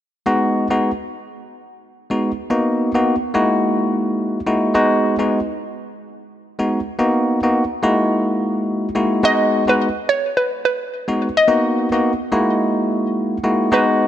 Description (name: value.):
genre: afrobeats.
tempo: 107 BPM.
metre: 4/4.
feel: swing 58% on 16ths.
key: unclear.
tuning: A4 = 444 Hz.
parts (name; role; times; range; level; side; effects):
barky tine electric piano; accompaniment; 0.3-14.1 s; G#3 to F#4; -17 LUFS; equal; none.
hollow square pluck; melody; 9.2-14.1 s; B4 to D#5; -18 LUFS; right 1 dB; chorus, ping-pong delay.
room: moderate lush hall reverb, RT60 3.0 s.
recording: none.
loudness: -16 LUFS.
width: side -11 dB against mid.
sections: 0.3-9.2 A section; 9.2-14.1 B section.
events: none.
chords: 0.3 G#m7; 2.5 Bmaj7; 3.3 F#13; 4.7 G#m7; 7.0 Bmaj7; 7.8 F#13; 9.2 G#m7; 11.5 Bmaj7; 12.3 F#13.